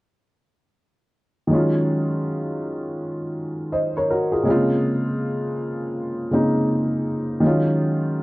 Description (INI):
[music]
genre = hip hop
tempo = 81 BPM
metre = 4/4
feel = swing 59% on 16ths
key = Eb dorian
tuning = A4 = 440 Hz
[part]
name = dark upright piano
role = accompaniment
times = 1.5-8.2 s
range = C3 to Eb5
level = -20 LUFS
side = equal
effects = cassette tape, low-pass filter
[sound]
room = wet studio ambience, RT60 0.5 s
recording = dark, warm production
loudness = -20 LUFS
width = side -20 dB against mid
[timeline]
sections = 1.5-8.2 A section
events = none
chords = 1.5 Ebm11; 4.5 Bbm9; 7.4 Ebm11